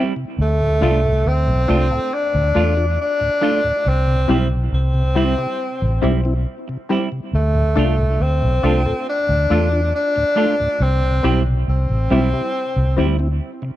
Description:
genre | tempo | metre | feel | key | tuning
reggae | 69 BPM | 4/4 | straight | D dorian | A4 = 440 Hz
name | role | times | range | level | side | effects
mellow tonewheel organ | accompaniment | 0.0-13.7 s | D2 to F4 | -26 LUFS | equal | slow rotary speaker, dub echo
semi-hollow electric guitar | accompaniment | 0.0-13.7 s | G3 to F4 | -26 LUFS | right 7 dB | dub echo
filtered dub chord stab | stabs | 0.0-13.1 s | C4 to A4 | -24 LUFS | left 4 dB | chorus
warm tenor saxophone | melody | 0.4-13.4 s | A3 to D4 | -20 LUFS | left 1 dB | dub echo
vintage muted fingered electric bass | bass | 0.4-13.4 s | A1 to E2 | -17 LUFS | equal | none
room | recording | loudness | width
digital ambience | dry, close 1970s-style studio recording | -16 LUFS | side -14 dB against mid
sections
0.0-13.8 A section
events
none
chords
0.4 Dm; 3.9 C; 7.3 Dm; 10.8 C

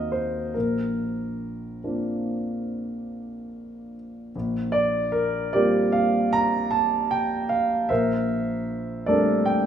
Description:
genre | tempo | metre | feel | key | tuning
classical, impressionist solo piano | 47-52 BPM (dotted quarters) | 9/8 | rubato | Bb major | A4 = 439 Hz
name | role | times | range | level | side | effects
warm concert grand piano | solo | 0.0-9.7 s | Bb1 to Bb5 | -22 LUFS | right 1 dB | none
room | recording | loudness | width
wet concert hall reverb, RT60 2.0 s | small room ambience | -22 LUFS | side -9 dB against mid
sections
0.0-4.3 A section; 4.3-9.7 A section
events
none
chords
0.0 Ebm6; 0.5 Bbadd9; 4.3 Bbsus2; 7.9 C13/Bb

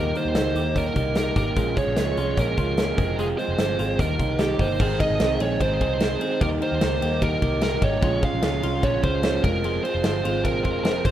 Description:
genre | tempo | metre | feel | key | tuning
jangly indie pop | 149 BPM | 4/4 | straight | Ab major | A4 = 440 Hz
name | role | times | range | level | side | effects
high-gain lead guitar | melody | 0.0-11.1 s | G4 to F5 | -27 LUFS | right 1 dB | distortion, slapback echo
overdriven electric guitar | accompaniment | 0.0-11.1 s | F2 to F4 | -28 LUFS | right 6 dB | none
twelve-string electric guitar | arpeggios | 0.0-11.1 s | Eb3 to Ab4 | -29 LUFS | left 4 dB | spring reverb, slapback echo
vintage muted picked electric bass | bass | 0.0-11.1 s | F1 to Eb2 | -28 LUFS | equal | none
big rock drum kit | drums | 0.2-11.1 s | crash cymbal, hi-hat, kick drum, ride cymbal, snare drum | -26 LUFS | equal | none
room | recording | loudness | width
little or no reverb | rough home demo mix | -20 LUFS | side -11 dB against mid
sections
0.0-4.8 A section; 4.8-11.1 A section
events
none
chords
0.0 Eb; 1.6 Bbm7; 3.0 Fm; 4.0 Eb; 4.8 Ab; 6.4 Eb; 8.0 Bbm7; 9.4 Fm

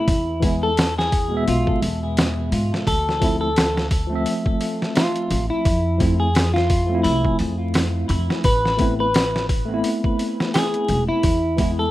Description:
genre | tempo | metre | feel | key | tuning
trip hop | 86 BPM | 4/4 | swing 57% on 16ths | A harmonic minor | A4 = 438 Hz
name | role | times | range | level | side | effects
clean electric guitar | melody | 0.0-11.9 s | E4 to B4 | -23 LUFS | left 1 dB | analog chorus, tape echo
tine electric piano | accompaniment | 0.0-11.9 s | B2 to E5 | -25 LUFS | equal | overdrive, medium stereo tremolo, tape echo
upright bass | bass | 0.1-11.9 s | E1 to G#2 | -24 LUFS | equal | none
boom bap sampler-style drum kit | drums | 0.1-11.8 s | hi-hat, kick drum, snare drum | -21 LUFS | equal | studio reverb
room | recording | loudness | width
digital ambience | rough home demo mix, vinyl crackle | -18 LUFS | side -15 dB against mid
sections
0.0-11.9 A section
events
none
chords
0.1 E; 2.9 Dm7; 5.7 Fmaj7; 8.4 Amadd9; 11.2 E

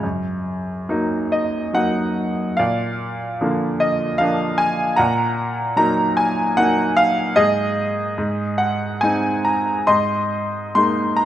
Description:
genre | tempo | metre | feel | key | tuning
classical, lyrical solo piano | 69-76 BPM | 3/4 | rubato | unclear | A4 = 440 Hz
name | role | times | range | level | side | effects
clear grand piano | solo | 0.0-11.2 s | Gb2 to C6 | -17 LUFS | equal | none
room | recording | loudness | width
moderate concert hall reverb, RT60 2.1 s | minimal, uncompressed stereo recording | -17 LUFS | side -12 dB against mid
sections
0.0-11.2 A section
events
none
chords
0.0 Gb6; 2.6 Bb; 5.0 Ebm/Bb; 7.4 N.C.; 8.2 Ab; 9.9 Absus2

